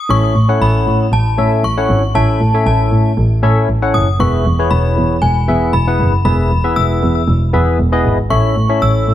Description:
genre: dance-pop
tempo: 117 BPM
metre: 4/4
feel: straight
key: unclear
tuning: A4 = 440 Hz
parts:
  - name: synth chime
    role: melody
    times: 0.0-9.1 s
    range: G#5 to E6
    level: -19 LUFS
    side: left 2 dB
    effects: ensemble chorus, tremolo, ping-pong delay
  - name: barky tine electric piano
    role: accompaniment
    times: 0.1-9.1 s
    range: B3 to F#5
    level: -17 LUFS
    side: left 2 dB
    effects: overdrive, analog chorus
  - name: warm double bass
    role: bass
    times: 0.1-9.1 s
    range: E1 to A2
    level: -13 LUFS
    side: equal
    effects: none
room: little or no reverb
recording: none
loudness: -11 LUFS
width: side -12 dB against mid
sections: 0.1-9.1 A section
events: none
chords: 0.1 A; 4.2 E; 8.3 A

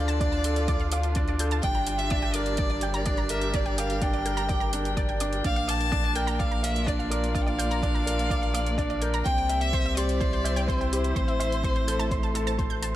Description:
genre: piano and strings electronica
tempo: 126 BPM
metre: 4/4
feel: straight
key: unclear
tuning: A4 = 440 Hz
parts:
  - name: dark violin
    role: melody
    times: 0.0-12.6 s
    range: C5 to A5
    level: -31 LUFS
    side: equal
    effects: tape echo
  - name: dark string quartet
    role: sustained chords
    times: 0.0-13.0 s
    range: A2 to G5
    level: -33 LUFS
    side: left 1 dB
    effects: sidechain pumping
  - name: analog pluck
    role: arpeggios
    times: 0.0-12.9 s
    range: C5 to G6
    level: -36 LUFS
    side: right 3 dB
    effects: chorus, sidechain pumping, tape echo
  - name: felt-muted upright piano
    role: riff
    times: 0.0-13.0 s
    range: C4 to D6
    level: -31 LUFS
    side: equal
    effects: tape echo
  - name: warm sub bass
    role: bass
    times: 0.0-13.0 s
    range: G1 to D2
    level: -29 LUFS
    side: equal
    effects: sidechain pumping
  - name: electronic hi-hat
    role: drums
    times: 0.1-12.9 s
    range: none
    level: -37 LUFS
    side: right 1 dB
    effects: overdrive
  - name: electronic kick drum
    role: drums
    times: 0.2-12.7 s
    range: none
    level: -29 LUFS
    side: equal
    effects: none
room: light reverb, small room reverb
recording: none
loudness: -24 LUFS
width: side -13 dB against mid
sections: 0.0-13.0 A section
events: none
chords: 0.0 Dm; 1.6 Gm; 5.4 Bb; 9.3 C; 11.2 Am

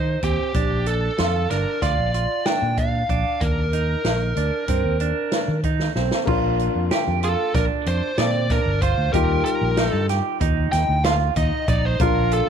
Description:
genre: progressive instrumental, band music in an uneven meter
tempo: 189 BPM (eighths)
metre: 9/8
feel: straight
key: Bb major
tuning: A4 = 440 Hz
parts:
  - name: biting lead guitar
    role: melody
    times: 0.0-12.5 s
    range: G4 to G5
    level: -25 LUFS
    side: left 1 dB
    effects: overdrive
  - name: clean electric guitar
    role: arpeggios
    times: 0.0-12.5 s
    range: C4 to G4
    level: -26 LUFS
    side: right 14 dB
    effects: spring reverb, slapback echo
  - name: fingered electric bass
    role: bass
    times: 0.0-12.4 s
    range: G1 to Eb3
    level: -23 LUFS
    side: equal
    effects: none
  - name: open jazz drum kit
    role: drums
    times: 0.2-12.5 s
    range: crash cymbal, hi-hat, kick drum, snare drum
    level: -25 LUFS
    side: equal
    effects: none
  - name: dark grand piano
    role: accompaniment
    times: 6.3-12.5 s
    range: G3 to F4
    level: -26 LUFS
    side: left 16 dB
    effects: none
room: light reverb, small room ambience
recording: 1960s-style stereo with parts hard left and right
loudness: -19 LUFS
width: side -8 dB against mid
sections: 0.0-6.3 A section; 6.3-12.5 B section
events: drum fill 5.8-6.3; lead electric guitar solo 6.3-12.5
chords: 0.0 Eb; 0.6 Bb; 3.4 Ebmaj7(no3); 6.3 Bb; 9.1 Ebmaj7

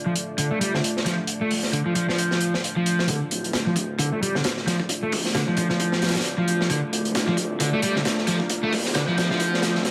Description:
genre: breakbeat, breaks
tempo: 133 BPM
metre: 4/4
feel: swing 57% on 16ths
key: D minor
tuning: A4 = 437 Hz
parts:
  - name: deep dark ambient pad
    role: sustained chords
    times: 0.0-9.9 s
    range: A3 to D5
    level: -32 LUFS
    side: equal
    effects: chorus, built-in reverb, sidechain pumping
  - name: crunchy overdriven guitar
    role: riff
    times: 0.1-9.7 s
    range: D3 to A3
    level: -27 LUFS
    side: equal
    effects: tube saturation, low-pass filter, dub echo
  - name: crunchy breakbeat drum kit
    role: drums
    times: 0.2-9.9 s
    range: hi-hat, kick drum, snare drum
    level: -28 LUFS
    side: equal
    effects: high-pass filter on kick, high-pass filter on hats, high-pass filter on snare, high-pass filter on room
  - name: dark detuned saw bass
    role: bass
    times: 3.1-9.9 s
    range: D1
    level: -35 LUFS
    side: equal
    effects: none
  - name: riser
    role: sound effects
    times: 6.9-9.9 s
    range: none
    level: -40 LUFS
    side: equal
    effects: none
room: moderate spring reverb, RT60 1.8 s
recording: echo-heavy mix, vinyl crackle, high-pass filter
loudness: -24 LUFS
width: mono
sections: 0.0-3.1 A section; 3.1-9.9 B section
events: build-up 3.1-9.9; filter sweep on overdriven electric guitar 3.1-9.9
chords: 0.0 Dm

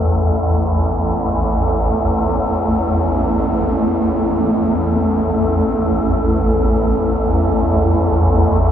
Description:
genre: dark ambient drone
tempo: free time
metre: none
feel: none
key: unclear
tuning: A4 = 442 Hz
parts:
  - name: swarming drone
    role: drone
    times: 0.0-8.7 s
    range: A1 to E2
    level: -15 LUFS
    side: equal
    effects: built-in reverb, phaser
  - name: wind-like tuned noise texture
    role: texture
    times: 0.0-8.7 s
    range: A3 to A4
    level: -22 LUFS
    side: right 1 dB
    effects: built-in reverb
room: wet huge ambient reverb, RT60 7.7 s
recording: dark, warm production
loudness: -14 LUFS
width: side -9 dB against mid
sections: 0.0-8.7 A section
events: none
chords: 0.0 A5

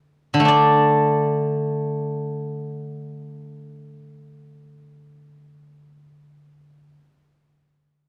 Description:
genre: chinese traditional, Chinese solo plucked strings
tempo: free time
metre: none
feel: none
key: unclear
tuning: A4 = 440 Hz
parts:
  - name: steel-string zither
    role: solo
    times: 0.3-7.0 s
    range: D3 to D5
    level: -21 LUFS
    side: equal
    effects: none
room: light reverb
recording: close, detailed microphones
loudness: -20 LUFS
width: mono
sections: 0.5-6.5 A section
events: none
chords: none

